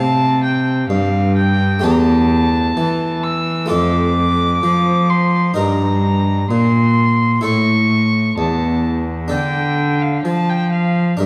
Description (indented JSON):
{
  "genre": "classical, baroque-style sonata movement with continuo",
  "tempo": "64 BPM",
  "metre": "4/4",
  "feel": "straight",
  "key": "D minor",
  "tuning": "A4 = 438 Hz",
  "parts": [
    { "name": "dark violin", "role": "melody", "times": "0.0-11.3 s", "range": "E5 to E6", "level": "-22 LUFS", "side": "equal", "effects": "none" },
    { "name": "harpsichord", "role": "accompaniment", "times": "0.0-11.3 s", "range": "E2 to C#5", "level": "-23 LUFS", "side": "equal", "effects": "none" },
    { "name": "rich cello", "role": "bass", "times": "0.0-11.3 s", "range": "E2 to F3", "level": "-19 LUFS", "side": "equal", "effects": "none" }
  ],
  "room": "moderate concert hall reverb, RT60 2.4 s",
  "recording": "dark, warm production",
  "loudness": "-16 LUFS",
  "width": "mono",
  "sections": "0.0-11.3 A section",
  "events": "none",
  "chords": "0.0 F; 1.8 A7/E; 3.7 Dm/F; 5.6 Eb/G; 7.4 A; 9.3 Dm"
}